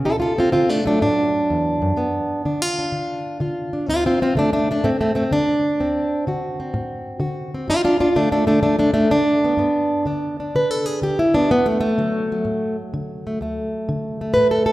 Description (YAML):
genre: acoustic country blues, solo or duo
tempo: 126 BPM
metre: 4/4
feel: swing 68% on 8ths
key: D mixolydian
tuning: A4 = 440 Hz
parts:
  - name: fingerpicked plugged-in acoustic archtop guitar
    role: solo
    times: 0.0-14.7 s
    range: D2 to B4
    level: -18 LUFS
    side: equal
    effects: none
room: wet recital hall reverb, RT60 1.8 s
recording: recorded in a church or concert hall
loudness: -18 LUFS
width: side -16 dB against mid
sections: 0.1-14.7 A section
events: steel-string acoustic guitar solo 0.1-14.7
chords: 0.1 D7; 2.0 G7; 3.9 D7; 7.7 G; 11.5 D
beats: | 0.07 0.55 1.02 1.50 | 1.98 2.45 2.93 3.40 | 3.88 4.36 4.83 5.31 | 5.78 6.26 6.73 7.21 | 7.68 8.16 8.63 9.11 | 9.58 10.06 10.54 11.01 | 11.49 11.96 12.44 12.92 | 13.39 13.87 14.35